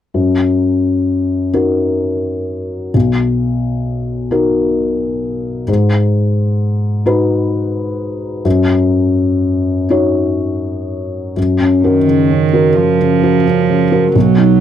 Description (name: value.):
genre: neoclassical piano and strings.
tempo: 43 BPM (dotted quarters).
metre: 6/8.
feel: rubato.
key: F# major.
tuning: A4 = 440 Hz.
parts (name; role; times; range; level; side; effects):
felt-muted upright piano; accompaniment; 0.1-14.6 s; B1 to C#5; -13 LUFS; left 2 dB; none.
warm cello; second line; 11.8-14.6 s; D#3 to F#3; -13 LUFS; right 12 dB; none.
room: light reverb.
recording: dry, close 1970s-style studio recording.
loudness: -12 LUFS.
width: side -10 dB against mid.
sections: 0.1-11.4 A section; 11.4-14.6 B section.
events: none.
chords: 0.1 F#6; 2.9 Bmaj7; 5.7 G#m7; 8.4 D#m7/F#; 11.4 F#6.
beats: | 0.14 1.54 | 2.94 4.32 | 5.68 7.06 | 8.45 9.90 | 11.37 12.76 | 14.15.